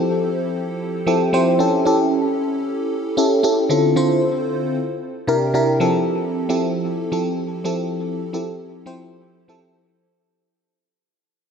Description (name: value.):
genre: R&B.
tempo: 114 BPM.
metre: 4/4.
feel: swing 62% on 16ths.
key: F major.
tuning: A4 = 439 Hz.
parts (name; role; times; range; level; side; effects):
FM electric piano with soft pad layer; solo; 0.0-10.0 s; C3 to C5; -18 LUFS; equal; chorus, phaser, analog delay.
room: wet plate reverb, RT60 2.7 s.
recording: dreamy mix soaked in reverb.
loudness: -18 LUFS.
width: side -6 dB against mid.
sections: 0.0-5.8 A section; 5.8-10.0 B section.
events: fade-out 5.8-10.0.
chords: 0.0 Fmaj7; 1.6 A7; 3.7 Dm7; 4.8 C7; 5.8 Fmaj7.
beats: 0.01 0.54 1.06 | 1.59 2.12 2.64 3.17 | 3.70 4.22 4.75 5.28 | 5.80 6.33 6.86 7.38 | 7.91 8.43 8.96 9.49.